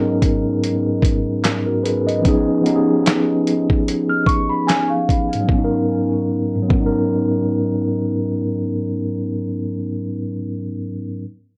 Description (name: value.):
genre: lo-fi hip hop.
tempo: 74 BPM.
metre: 4/4.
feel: swing 56% on 16ths.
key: G# dorian.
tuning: A4 = 440 Hz.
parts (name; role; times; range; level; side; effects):
mellow tine electric piano; accompaniment; 0.0-11.3 s; G#2 to D#5; -20 LUFS; equal; low-pass filter.
dusty soul sampler-style drum kit; drums; 0.2-6.9 s; handclaps, hi-hat, kick drum, snare drum; -21 LUFS; equal; none.
large celesta; second line; 4.1-5.5 s; E#5 to E#6; -24 LUFS; equal; low-pass filter, analog delay.
room: moderate studio reverb, RT60 0.5 s.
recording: worn, warbling old tape, cassette tape, warbly pitch drift.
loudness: -19 LUFS.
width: mono.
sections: 0.0-5.5 A section; 5.5-8.7 B section.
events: none.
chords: 0.0 G#m11; 2.2 C#7; 5.5 G#m11.